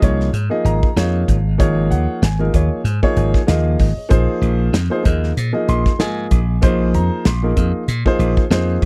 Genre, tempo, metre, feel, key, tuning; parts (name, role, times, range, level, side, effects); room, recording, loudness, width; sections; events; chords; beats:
electric jazz fusion; 96 BPM; 4/4; swing 56% on 16ths; Bb minor; A4 = 442 Hz
warm concert grand piano; accompaniment; 0.0-8.9 s; F3 to C6; -23 LUFS; equal
slap bass; bass; 0.0-8.9 s; Ab1 to Bb2; -20 LUFS; equal
modern studio drum kit; drums; 0.0-8.9 s; hi-hat, kick drum, snare drum; -19 LUFS; equal
little or no reverb; dry, close 1970s-style studio recording; -17 LUFS; mono
0.0-8.9 A section
grand piano fill 2.9-4.1
0.0 Absus24; 4.1 Bb9sus4
0.34 0.97 | 1.60 2.23 2.86 3.49 | 4.11 4.74 5.37 6.00 | 6.63 7.25 7.88 8.51